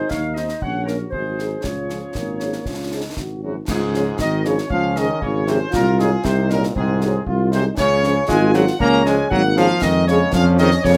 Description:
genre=military-style march for wind band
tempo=117 BPM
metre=2/4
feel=straight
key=Db major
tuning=A4 = 445 Hz
part: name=warm trumpet section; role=melody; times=0.0-11.0 s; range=Gb4 to Bb5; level=-28 LUFS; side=equal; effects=none
part: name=clear euphonium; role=second line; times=0.0-11.0 s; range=Gb2 to Ab4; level=-26 LUFS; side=equal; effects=none
part: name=dark woodwind section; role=second line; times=0.0-11.0 s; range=Gb4 to Bb5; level=-29 LUFS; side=equal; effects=none
part: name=dark trombone section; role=sustained chords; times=0.0-11.0 s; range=Eb3 to F4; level=-28 LUFS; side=equal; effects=none
part: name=mellow tuba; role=bass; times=0.0-11.0 s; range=Ab1 to F2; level=-22 LUFS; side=equal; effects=none
part: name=concert snare drum, concert bass drum and clash cymbals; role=drums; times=0.1-11.0 s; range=none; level=-32 LUFS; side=equal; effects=none
part: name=dark French horn section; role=accompaniment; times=0.4-10.7 s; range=F3 to Ab4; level=-26 LUFS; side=equal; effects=none
room=light reverb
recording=close, detailed microphones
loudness=-19 LUFS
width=mono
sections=0.0-3.7 A section; 3.7-11.0 A section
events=none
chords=0.0 Ab (rootless); 0.6 Gb/Bb; 1.1 Ab7; 1.6 Db; 5.7 Ab7/C; 7.8 Db; 9.8 Db/F

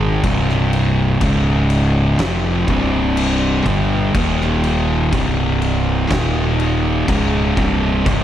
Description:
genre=stoner and doom metal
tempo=61 BPM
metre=4/4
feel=straight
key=C minor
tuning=A4 = 440 Hz
part: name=thick fuzz guitar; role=riff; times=0.0-8.2 s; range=C2 to Ab3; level=-16 LUFS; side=equal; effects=distortion
part: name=fuzz fingered electric bass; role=bass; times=0.0-8.2 s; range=C1 to Ab1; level=-21 LUFS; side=equal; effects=overdrive
part: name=oversized low-tuned drum kit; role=drums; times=0.2-8.2 s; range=crash cymbal, kick drum, snare drum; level=-22 LUFS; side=equal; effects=none
room=small room ambience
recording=none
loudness=-14 LUFS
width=side -11 dB against mid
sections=0.0-8.2 A section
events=none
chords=0.0 Cm; 1.2 Db5; 2.2 C5; 4.2 Eb5; 5.1 C5; 6.1 Eb5; 7.1 C5

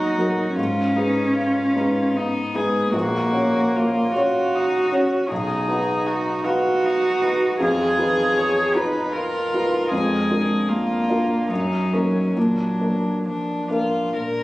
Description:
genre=classical, slow romantic movement for piano trio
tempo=76 BPM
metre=3/4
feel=uneven beats, rubato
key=F# major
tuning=A4 = 440 Hz
part: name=warm violin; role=melody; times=0.0-14.4 s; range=C#4 to Db5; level=-26 LUFS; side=left 1 dB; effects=none
part: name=dark cello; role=second line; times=0.0-14.4 s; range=Bb2 to Ab4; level=-22 LUFS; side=right 1 dB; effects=none
part: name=warm grand piano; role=accompaniment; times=0.0-14.4 s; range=A#1 to C#5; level=-23 LUFS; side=left 1 dB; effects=none
room=moderate recital hall reverb, RT60 1.8 s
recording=recorded on a phone in the room, club reverb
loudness=-18 LUFS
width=side -18 dB against mid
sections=0.0-14.4 A section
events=none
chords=0.0 D#m; 0.6 G#m; 2.9 F#/A#; 5.3 B; 7.6 Fm7b5; 9.9 Bb7/F; 11.5 Ebm/Gb; 12.4 Bb

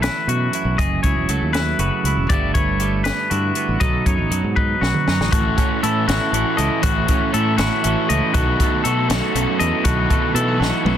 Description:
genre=math rock and midwest emo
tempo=80 BPM (dotted quarters)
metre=6/8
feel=straight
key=unclear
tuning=A4 = 439 Hz
part: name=twelve-string electric guitar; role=accompaniment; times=0.0-11.0 s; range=F#2 to B4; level=-24 LUFS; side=right 9 dB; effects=none
part: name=twangy electric guitar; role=arpeggios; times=0.0-11.0 s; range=F#4 to D#5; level=-22 LUFS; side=left 8 dB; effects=analog delay
part: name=overdriven fingered electric bass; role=bass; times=0.0-10.9 s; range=E1 to B2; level=-22 LUFS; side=equal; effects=none
part: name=compact cocktail drum kit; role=drums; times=0.0-11.0 s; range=hi-hat, kick drum, snare drum, toms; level=-21 LUFS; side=equal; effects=none
part: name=crunchy overdriven guitar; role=riff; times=5.3-11.0 s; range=A2 to A4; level=-23 LUFS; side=equal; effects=spring reverb
room=light reverb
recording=dense, heavily limited modern master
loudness=-16 LUFS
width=side -10 dB against mid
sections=0.0-5.3 A section; 5.3-11.0 B section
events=drum fill 4.6-5.3, 10.6-11.0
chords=0.0 B7sus4; 0.8 F#m9; 2.3 G69; 3.8 B9; 5.3 A6; 8.3 B7sus4

